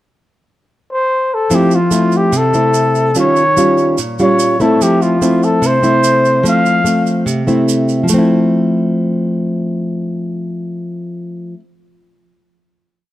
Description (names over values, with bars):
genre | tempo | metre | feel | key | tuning
bossa nova | 146 BPM | 4/4 | straight | F major | A4 = 440 Hz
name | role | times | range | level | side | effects
breathy flugelhorn | melody | 0.9-7.2 s | F4 to F5 | -14 LUFS | left 1 dB | none
nylon-string guitar | accompaniment | 1.5-11.7 s | Bb2 to F4 | -13 LUFS | equal | none
tube shaker | percussion | 1.5-8.2 s | none | -25 LUFS | right 10 dB | none
room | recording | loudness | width
light reverb | dark, warm production | -11 LUFS | side -14 dB against mid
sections
0.0-1.5 pickup bar; 1.5-8.1 A section; 8.1-11.4 final chord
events
none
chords
0.0 N.C.; 1.5 Fmaj7; 3.2 Eb9; 4.8 Fmaj7